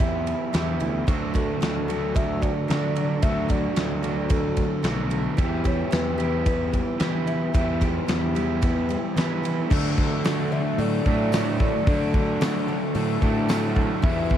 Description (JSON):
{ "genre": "rock, shoegaze and dream pop", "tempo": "111 BPM", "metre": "4/4", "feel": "straight", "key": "D major", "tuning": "A4 = 440 Hz", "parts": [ { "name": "pure breathy sine lead", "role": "melody", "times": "0.0-14.4 s", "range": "A4 to E5", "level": "-31 LUFS", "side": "left 1 dB", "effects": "chorus, tape echo" }, { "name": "picked twelve-string acoustic guitar", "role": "arpeggios", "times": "0.0-14.4 s", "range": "E3 to G4", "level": "-35 LUFS", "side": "left 4 dB", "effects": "wide subtle chorus, tape echo" }, { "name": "crunchy overdriven guitar", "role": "riff", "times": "0.0-14.4 s", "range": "D3 to G4", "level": "-29 LUFS", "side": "right 7 dB", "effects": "reverse reverb" }, { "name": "raw garage guitar", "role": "riff", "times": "0.0-14.4 s", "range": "D3 to G4", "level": "-31 LUFS", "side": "left 8 dB", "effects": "overdrive, wide subtle chorus" }, { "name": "fuzz fingered electric bass", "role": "bass", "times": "0.0-14.4 s", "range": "B1 to E3", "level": "-27 LUFS", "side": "equal", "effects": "overdrive" }, { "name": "big rock drum kit", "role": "drums", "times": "0.0-14.4 s", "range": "crash cymbal, hi-hat, kick drum, ride cymbal, snare drum", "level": "-26 LUFS", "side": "equal", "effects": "none" }, { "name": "overdriven semi-hollow guitar", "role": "riff", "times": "9.7-14.4 s", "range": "E2 to D4", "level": "-32 LUFS", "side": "equal", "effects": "none" }, { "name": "tambourine", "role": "percussion", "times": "10.2-13.6 s", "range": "none", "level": "-45 LUFS", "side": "right 7 dB", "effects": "none" } ], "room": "moderate small room reverb, RT60 0.5 s", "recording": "vinyl crackle", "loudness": "-21 LUFS", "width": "side -10 dB against mid", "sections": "0.0-9.7 A section; 9.7-14.4 B section", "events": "none", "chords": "0.0 Em; 1.1 D; 5.4 Em; 9.7 D" }